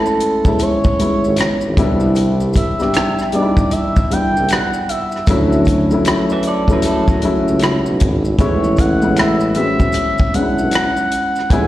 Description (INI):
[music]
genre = R&B, neo-soul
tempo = 77 BPM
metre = 4/4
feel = swing 63% on 16ths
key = A major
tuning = A4 = 440 Hz
[part]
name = expressive portamento lead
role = melody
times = 0.0-11.7 s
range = A4 to G#5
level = -20 LUFS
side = right 1 dB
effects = chorus, plate reverb, slapback echo
[part]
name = dark baby grand piano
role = accompaniment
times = 0.0-11.7 s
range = F#3 to G4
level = -18 LUFS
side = left 1 dB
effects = plate reverb, slapback echo
[part]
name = maracas and finger snaps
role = percussion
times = 0.1-11.5 s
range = none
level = -35 LUFS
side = left 2 dB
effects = slapback echo
[part]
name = warm soul drum kit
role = drums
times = 0.2-11.7 s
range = hi-hat, kick drum, rim click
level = -17 LUFS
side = equal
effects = none
[part]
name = mellow tuba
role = bass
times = 1.0-11.7 s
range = G#1 to D2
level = -18 LUFS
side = right 1 dB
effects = none
[part]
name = electric guitar through a small old amp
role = second line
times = 6.3-8.2 s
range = C#4 to E5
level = -21 LUFS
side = right 3 dB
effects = plate reverb, slapback echo
[sound]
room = moderate club reverb, RT60 0.6 s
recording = live gig heard through the venue's PA, recital hall reverb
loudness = -13 LUFS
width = side -14 dB against mid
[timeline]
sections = 0.0-11.7 A section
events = none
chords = 0.0 Amaj9; 1.8 Cmaj9; 5.3 Dmaj9; 8.4 Amaj9